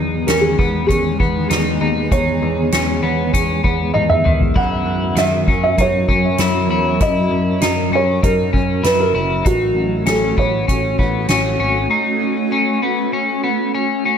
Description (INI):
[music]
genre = dream pop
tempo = 98 BPM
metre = 4/4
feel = straight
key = unclear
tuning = A4 = 436 Hz
[part]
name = felt-muted upright piano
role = melody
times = 0.0-13.7 s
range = F#4 to F#5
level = -20 LUFS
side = right 1 dB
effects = digital delay
[part]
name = granular cloud pad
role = sustained chords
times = 0.0-14.2 s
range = D#3 to A#4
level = -21 LUFS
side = equal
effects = built-in reverb
[part]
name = electric guitar at the edge of break-up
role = arpeggios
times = 0.0-14.2 s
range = D#3 to E4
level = -20 LUFS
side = left 4 dB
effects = analog chorus, digital delay
[part]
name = picked electric bass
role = bass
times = 0.0-11.9 s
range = F#1 to F#2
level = -22 LUFS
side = equal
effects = none
[part]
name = soft-mallet drum kit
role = drums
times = 0.3-11.4 s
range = crash cymbal, hi-hat, kick drum, snare drum, toms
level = -21 LUFS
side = equal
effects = none
[sound]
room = light reverb, small room ambience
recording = none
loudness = -14 LUFS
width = side -8 dB against mid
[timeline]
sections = 0.0-14.2 A section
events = drum fill 3.9-4.6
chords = 0.0 Emaj7; 4.6 F#7; 9.5 A6